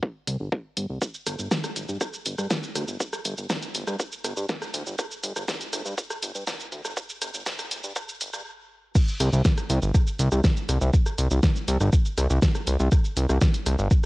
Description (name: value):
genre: melodic techno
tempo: 121 BPM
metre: 4/4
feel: straight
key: unclear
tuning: A4 = 445 Hz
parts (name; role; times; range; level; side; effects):
- electronic kick drum; drums; 0.0-14.0 s; none; -21 LUFS; equal; high-pass filter on kick, cassette tape
- fat analog bass; bass; 0.3-13.9 s; G1 to G2; -24 LUFS; equal; sidechain pumping
- deep house drum kit; drums; 0.3-14.0 s; crash cymbal, hi-hat, rim click, shaker, snare drum; -29 LUFS; equal; cassette tape
room: light reverb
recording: home recording on cassette, high-pass filter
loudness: -23 LUFS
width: side -21 dB against mid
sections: 0.0-9.0 A section; 9.0-14.1 B section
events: build-up 0.0-9.0; filter sweep 0.0-9.0; stop 8.5-9.0; drop 9.0-14.1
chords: none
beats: 0.03 0.52 | 1.02 1.51 2.01 2.51 | 3.00 3.50 3.99 4.49 | 4.99 5.48 5.98 6.47 | 6.97 7.46 7.96 8.46 | 8.95 9.45 9.94 10.44 | 10.94 11.43 11.93 12.42 | 12.92 13.41 13.91